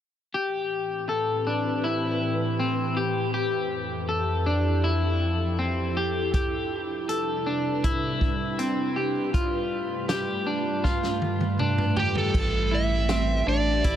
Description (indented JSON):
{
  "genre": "dream pop",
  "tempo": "80 BPM",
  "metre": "4/4",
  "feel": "straight",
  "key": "A minor",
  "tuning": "A4 = 440 Hz",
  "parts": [
    { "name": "ethereal airy pad", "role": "sustained chords", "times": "0.9-14.0 s", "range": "F2 to B4", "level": "-28 LUFS", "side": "right 1 dB", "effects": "ensemble chorus, built-in reverb, phaser" },
    { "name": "electric guitar at the edge of break-up", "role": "arpeggios", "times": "0.3-14.0 s", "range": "C4 to A4", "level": "-27 LUFS", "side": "left 2 dB", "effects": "lush chorus, tape echo" },
    { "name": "vintage drum kit", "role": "drums", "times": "6.3-14.0 s", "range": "crash cymbal, hi-hat, kick drum, snare drum, toms", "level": "-28 LUFS", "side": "equal", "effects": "none" },
    { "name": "overdriven slide guitar", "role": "melody", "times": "12.0-14.0 s", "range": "G4 to E5", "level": "-26 LUFS", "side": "right 4 dB", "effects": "tape echo" },
    { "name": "round analog bass", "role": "bass", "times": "12.3-14.0 s", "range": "A1", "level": "-26 LUFS", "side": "equal", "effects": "none" }
  ],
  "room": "moderate huge ambient reverb, RT60 5.1 s",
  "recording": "none",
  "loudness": "-23 LUFS",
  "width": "side -10 dB against mid",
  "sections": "0.3-12.3 A section; 12.3-14.0 B section",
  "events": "drum fill 10.8-12.3",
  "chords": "0.3 Am7; 3.3 Fmaj9; 6.3 Cmaj9; 9.3 G7; 12.3 Am7"
}